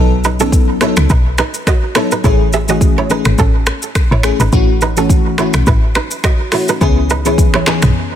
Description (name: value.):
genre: afrobeats.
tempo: 105 BPM.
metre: 4/4.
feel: swing 55% on 16ths.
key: B mixolydian.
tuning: A4 = 440 Hz.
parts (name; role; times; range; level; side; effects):
FM electric piano with soft pad layer; accompaniment; 0.0-7.9 s; E3 to A4; -17 LUFS; left 3 dB; chorus, phaser.
woody log drum bass; bass; 0.0-7.9 s; G#1 to C#2; -15 LUFS; equal; none.
kora; riff; 0.2-7.8 s; C#4 to E5; -18 LUFS; right 5 dB; digital delay.
deep house drum kit; drums; 0.2-7.9 s; finger snaps, handclaps, hi-hat, kick drum, rim click, shaker, toms; -14 LUFS; equal; soft clipping on snare.
room: little or no reverb.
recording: dense, heavily limited modern master.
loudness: -10 LUFS.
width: side -10 dB against mid.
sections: 0.0-8.2 A section.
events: break 8.0.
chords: 0.0 B7; 2.2 Amaj7; 4.5 F#m7/A; 6.8 C#m7.